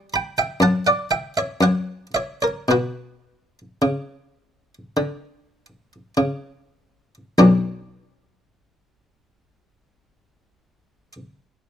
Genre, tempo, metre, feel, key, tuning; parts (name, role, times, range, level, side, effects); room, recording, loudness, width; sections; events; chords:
classical, baroque-style suite movement for harpsichord; 48-64 BPM; 4/4; rubato; B minor; A4 = 440 Hz
buff-stop harpsichord; solo; 0.0-11.1 s; B1 to B5; -17 LUFS; equal
light reverb; close, detailed microphones; -19 LUFS; side -9 dB against mid
0.0-7.4 A section; 7.4-11.7 B section
slowing down 0.0-7.4
0.0 Em; 0.6 F#m7; 1.6 F#; 2.7 Bm